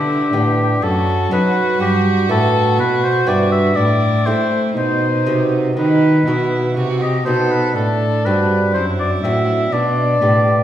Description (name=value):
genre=classical, baroque-style sonata movement with continuo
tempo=61 BPM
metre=3/4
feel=straight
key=unclear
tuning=A4 = 440 Hz
part: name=warm oboe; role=melody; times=0.0-10.6 s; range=G4 to E5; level=-19 LUFS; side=left 3 dB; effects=none
part: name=rich violin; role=second line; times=0.0-10.6 s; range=D4 to A4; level=-21 LUFS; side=right 4 dB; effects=none
part: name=lute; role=accompaniment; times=0.0-10.6 s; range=F#2 to B4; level=-21 LUFS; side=right 1 dB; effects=none
part: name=rich cello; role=bass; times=0.0-10.6 s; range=F#2 to A3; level=-18 LUFS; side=equal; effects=none
room=wet recital hall reverb, RT60 1.3 s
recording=heard from further back in the room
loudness=-14 LUFS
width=side -11 dB against mid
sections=0.0-10.6 A section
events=none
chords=0.0 G; 0.8 B7/F#; 1.8 Em/G; 3.8 Am; 4.8 B; 7.8 D7; 9.7 G/B